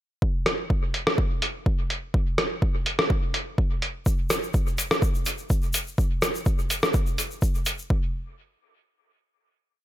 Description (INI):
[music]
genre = techno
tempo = 125 BPM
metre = 4/4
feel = swing 53% on 16ths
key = none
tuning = none
[part]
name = electronic kick drum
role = drums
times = 0.2-8.0 s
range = none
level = -24 LUFS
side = equal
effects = overdrive
[part]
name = lo-fi sampler-style drum kit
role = drums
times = 0.5-7.8 s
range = hi-hat, rim click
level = -26 LUFS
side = equal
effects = dub echo
[part]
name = tube shaker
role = percussion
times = 4.1-7.9 s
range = none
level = -34 LUFS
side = left 4 dB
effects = none
[sound]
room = little or no reverb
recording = none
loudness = -23 LUFS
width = side -13 dB against mid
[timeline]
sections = 0.2-7.9 groove; 7.9-9.8 final hit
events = none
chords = none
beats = | 0.22 0.70 1.18 1.66 | 2.14 2.62 3.10 3.58 | 4.06 4.54 5.02 5.50 | 5.98 6.46 6.94 7.42 | 7.90